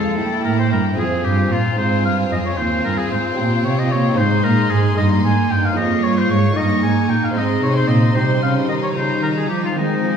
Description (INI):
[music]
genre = classical, baroque-style concerto movement with solo episodes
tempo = 75 BPM (dotted quarters)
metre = 6/8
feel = straight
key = unclear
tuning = A4 = 437 Hz
[part]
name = rich chamber violin section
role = melody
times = 0.0-10.2 s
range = F5 to Db6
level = -31 LUFS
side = left 5 dB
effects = none
[part]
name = warm oboe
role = melody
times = 0.0-10.2 s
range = Eb4 to Ab5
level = -22 LUFS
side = left 2 dB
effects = none
[part]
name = clear chamber violin section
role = second line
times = 0.0-10.2 s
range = C4 to F4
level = -25 LUFS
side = left 4 dB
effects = none
[part]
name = lute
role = accompaniment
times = 0.0-10.2 s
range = Eb2 to Bb4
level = -27 LUFS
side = right 2 dB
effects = none
[part]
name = rich chamber viola section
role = accompaniment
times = 0.0-10.2 s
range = G3 to C4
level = -23 LUFS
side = right 3 dB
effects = none
[part]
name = rich studio cello section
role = bass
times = 0.2-10.2 s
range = Eb2 to F3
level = -19 LUFS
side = right 2 dB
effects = none
[sound]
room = wet recital hall reverb, RT60 1.3 s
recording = heard from further back in the room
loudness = -15 LUFS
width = side -7 dB against mid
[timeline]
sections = 0.0-10.2 A section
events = none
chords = 0.2 Edim/G; 1.0 Fm; 1.8 Ab; 3.4 Gdim/Bb; 4.2 Ab; 5.0 Eb/G; 5.8 Db/F; 6.6 Eb7/G; 7.4 Ab; 8.2 Cm; 9.0 Bbm/Db